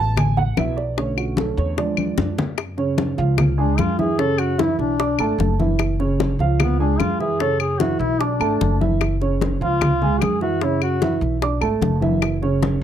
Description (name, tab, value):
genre	Afro-Cuban jazz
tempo	149 BPM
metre	4/4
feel	straight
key	F# minor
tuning	A4 = 436 Hz
part	dark upright piano	accompaniment	0.0-12.8 s	C#3 to D6	-22 LUFS	right 6 dB	none
part	upright bass	bass	0.0-12.8 s	F#1 to F#2	-23 LUFS	equal	none
part	bongos	percussion	0.2-12.8 s	none	-27 LUFS	left 9 dB	none
part	claves	percussion	0.2-12.4 s	none	-29 LUFS	left 16 dB	none
part	congas	percussion	0.2-12.8 s	none	-25 LUFS	left 3 dB	none
part	warm duduk	second line	3.6-11.2 s	B3 to A4	-23 LUFS	left 5 dB	none
room	small room ambience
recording	dry, close 1970s-style studio recording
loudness	-18 LUFS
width	side -10 dB against mid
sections	0.0-2.6 A section; 2.6-12.8 A section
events	upright piano solo 0.0-2.6; drum fill 2.0-2.6; duduk solo 2.6-12.8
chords	0.0 D69; 1.0 Bm9; 1.8 E7b9; 2.6 F#5; 3.4 C#; 4.2 F#5; 5.0 Bm7; 5.8 F#5; 6.6 C#; 7.4 F#5; 8.2 Bm7; 9.0 F#5; 9.8 C#; 10.6 F#5; 11.4 Bm7; 12.2 F#5